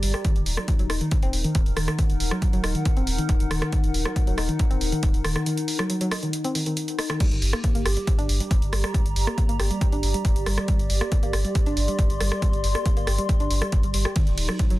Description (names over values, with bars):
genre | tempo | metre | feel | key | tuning
driving peak-time techno | 138 BPM | 4/4 | straight | G harmonic minor | A4 = 440 Hz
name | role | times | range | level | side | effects
woody wave-folded pluck | riff | 0.0-14.7 s | Eb3 to G4 | -30 LUFS | equal | chorus, overdrive, cassette tape, sidechain pumping, dub echo
warm sub bass | bass | 0.0-14.8 s | Eb1 to G1 | -26 LUFS | equal | tube saturation, sidechain pumping, low-pass filter
punchy analog drum machine | drums | 0.0-14.8 s | crash cymbal, hi-hat, ride cymbal, rim click | -30 LUFS | right 1 dB | overdrive, sidechain pumping on hats, sidechain pumping on cymbals
warbly tape-like pad | texture | 0.0-14.8 s | Eb4 to C6 | -31 LUFS | left 2 dB | chorus, built-in reverb, sidechain pumping
electronic kick drum | drums | 0.2-14.7 s | none | -22 LUFS | equal | none
room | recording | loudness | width
little or no reverb | dense, heavily limited modern master | -21 LUFS | side -17 dB against mid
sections
0.0-14.8 A section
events
break 5.5-7.2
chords
0.2 Ebm; 7.2 Gm; 14.2 Ebm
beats
| 0.25 0.68 1.12 1.55 | 1.99 2.42 2.86 3.29 | 3.73 4.16 4.59 5.03 | 5.46 5.90 6.33 6.77 | 7.20 7.64 8.07 8.51 | 8.94 9.38 9.81 10.25 | 10.68 11.12 11.55 11.99 | 12.42 12.86 13.29 13.73 | 14.16 14.60